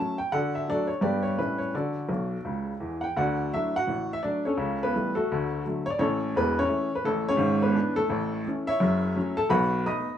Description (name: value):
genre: jazz, stride piano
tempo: 170 BPM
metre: 4/4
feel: swing 59% on 8ths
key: D major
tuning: A4 = 439 Hz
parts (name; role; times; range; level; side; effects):
- clear upright piano; solo; 0.0-10.2 s; E1 to D#6; -24 LUFS; equal; none
room: light reverb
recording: rough home demo mix, small room ambience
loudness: -24 LUFS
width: side -10 dB against mid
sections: 0.0-3.1 A section; 3.1-10.2 B section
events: upright piano fill 2.1-3.1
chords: 0.3 D; 1.0 G; 1.4 A7; 1.7 D; 4.6 A7/C#; 5.3 D; 6.0 A; 7.4 E7/G#; 8.1 A; 8.8 F#m7; 9.5 B7